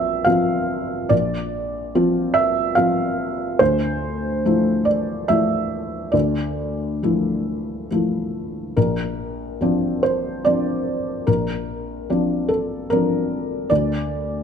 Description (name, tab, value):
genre	neoclassical minimalist piano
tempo	68-76 BPM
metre	3/4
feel	rubato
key	unclear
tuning	A4 = 440 Hz
part	felt-muted upright piano	solo	0.0-14.4 s	Bb1 to F5	-19 LUFS	equal	none
room	moderate recital hall reverb, RT60 1.6 s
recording	close, detailed microphones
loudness	-19 LUFS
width	side -7 dB against mid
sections	0.0-8.8 A section; 8.8-14.4 A section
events	none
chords	0.0 Bbadd9; 3.6 Dmadd9; 8.8 Bbadd9; 13.7 N.C.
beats	0.28 | 1.12 1.95 2.77 | 3.60 4.44 5.28 | 6.14 7.02 7.90 | 8.77 9.61 10.45 | 11.28 12.09 12.91 | 13.70